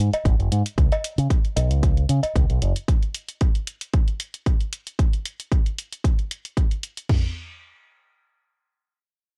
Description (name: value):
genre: nu-disco, nu disco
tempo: 114 BPM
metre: 4/4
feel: swing 53% on 16ths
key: unclear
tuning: A4 = 438 Hz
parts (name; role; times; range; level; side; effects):
- fingered electric bass with an envelope filter; bass; 0.0-2.7 s; F#1 to C#3; -23 LUFS; equal; transformer saturation
- electronic hi-hat; drums; 0.1-7.1 s; none; -35 LUFS; equal; none
- cowbell; percussion; 0.1-2.3 s; none; -29 LUFS; equal; none
- house drum kit; drums; 0.3-7.2 s; crash cymbal, kick drum, toms; -22 LUFS; equal; none
room: little or no reverb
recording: dry, gritty hardware recording, cassette tape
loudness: -23 LUFS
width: mono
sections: 0.0-7.1 A section; 7.1-9.4 B section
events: none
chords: none